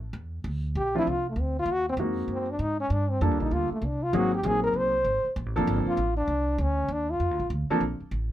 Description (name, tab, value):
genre	jazz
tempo	195 BPM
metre	4/4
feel	swing 63% on 8ths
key	Bb major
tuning	A4 = 440 Hz
part	upright bass	bass	0.0-8.3 s	F1 to Ab2	-30 LUFS	equal	none
part	mellow trombone	melody	0.8-7.5 s	A3 to C5	-27 LUFS	left 1 dB	none
part	dark baby grand piano	accompaniment	0.9-7.8 s	F3 to A4	-27 LUFS	equal	none
room	light reverb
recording	none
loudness	-24 LUFS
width	side -13 dB against mid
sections	0.0-7.8 A section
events	trombone solo 0.0-7.8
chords	0.4 Dm7; 1.7 Ab9; 2.9 Gm7; 4.1 Ab9; 5.4 Bbmaj9; 7.8 Bbmaj7(no3)